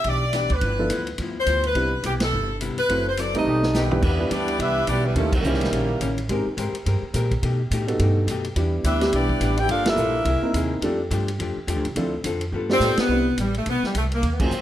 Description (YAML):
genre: jazz, big band swing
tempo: 212 BPM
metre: 4/4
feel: swing 60% on 8ths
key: C major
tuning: A4 = 442 Hz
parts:
  - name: clear saxophone section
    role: melody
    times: 0.0-6.2, 8.9-10.7, 12.7-14.6 s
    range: F3 to G5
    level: -24 LUFS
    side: left 1 dB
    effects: none
  - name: archtop guitar, miked and amplified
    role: accompaniment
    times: 0.0-13.0 s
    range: G2 to Bb4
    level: -30 LUFS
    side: left 4 dB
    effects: none
  - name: upright bass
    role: bass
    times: 0.0-14.6 s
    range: F#1 to B2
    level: -25 LUFS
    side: right 1 dB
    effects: none
  - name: vintage drum kit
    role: drums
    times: 0.0-14.6 s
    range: crash cymbal, hi-hat, kick drum, ride cymbal, snare drum, toms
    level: -30 LUFS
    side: right 1 dB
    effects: none
  - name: warm grand piano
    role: accompaniment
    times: 0.8-14.5 s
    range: Eb3 to C5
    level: -26 LUFS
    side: right 1 dB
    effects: none
  - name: warm trombone section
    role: second line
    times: 3.3-6.1, 8.9-10.7 s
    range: Db3 to G4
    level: -27 LUFS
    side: right 3 dB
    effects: none
room: moderate large studio reverb, RT60 1.1 s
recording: none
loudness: -20 LUFS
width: side -12 dB against mid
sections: 0.0-4.0 A section; 4.0-13.1 B section; 13.1-14.6 A section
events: band accent 2.2, 5.3, 9.8, 13.0, 14.4; drum fill 3.5-4.0, 12.5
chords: 0.0 Em7; 0.6 G13; 1.8 Cmaj7; 2.9 F#m7b5; 3.5 B7alt; 4.0 Em7; 5.2 Eb7b9; 6.3 Abmaj9; 7.4 B7b13; 8.6 Em7; 9.7 Gm9; 10.3 C7alt; 10.8 F69; 12.0 Dm7; 12.5 G9; 13.1 Cmaj7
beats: 0.05 0.33 | 0.62 0.90 1.19 1.47 | 1.75 2.04 2.32 2.60 | 2.89 3.17 3.46 3.74 | 4.02 4.31 4.59 4.88 | 5.16 5.44 5.73 6.01 | 6.29 6.58 6.86 7.14 | 7.43 7.71 7.99 8.28 | 8.56 8.84 9.13 9.41 | 9.69 9.98 10.26 10.54 | 10.83 11.11 11.39 11.68 | 11.96 12.24 12.53 12.81 | 13.09 13.38 13.66 13.94 | 14.23 14.51